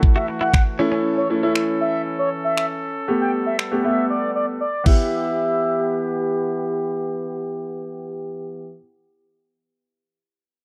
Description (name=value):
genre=dance-pop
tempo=118 BPM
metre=4/4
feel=straight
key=E dorian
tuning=A4 = 444 Hz
part: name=clear grand piano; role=accompaniment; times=0.0-8.8 s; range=A3 to G4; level=-25 LUFS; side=equal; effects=sidechain pumping, low-pass filter
part: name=bright brass ensemble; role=sustained chords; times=0.0-8.8 s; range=E3 to A4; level=-28 LUFS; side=equal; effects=sidechain pumping, low-pass filter
part: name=pop drum kit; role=drums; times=0.0-5.0 s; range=crash cymbal, finger snaps, kick drum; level=-19 LUFS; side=equal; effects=none
part: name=downlifter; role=sound effects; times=0.0-1.0 s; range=none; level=barely audible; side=none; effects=none
part: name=expressive synth lead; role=melody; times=0.2-6.6 s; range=C#5 to G5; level=-26 LUFS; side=equal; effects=chorus, sidechain pumping, low-pass filter, tape echo
part: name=direct-recorded clean electric guitar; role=riff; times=0.2-1.0 s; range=C#4 to F#4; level=-28 LUFS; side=equal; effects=lush chorus, low-pass filter
room=digital ambience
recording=dry, close 1970s-style studio recording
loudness=-21 LUFS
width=mono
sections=0.0-5.1 A section; 5.1-9.2 B section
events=filter sweep 0.0-5.1; silent gap 4.6-5.1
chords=0.0 F#m7; 0.8 A; 3.1 Gadd9; 4.9 Em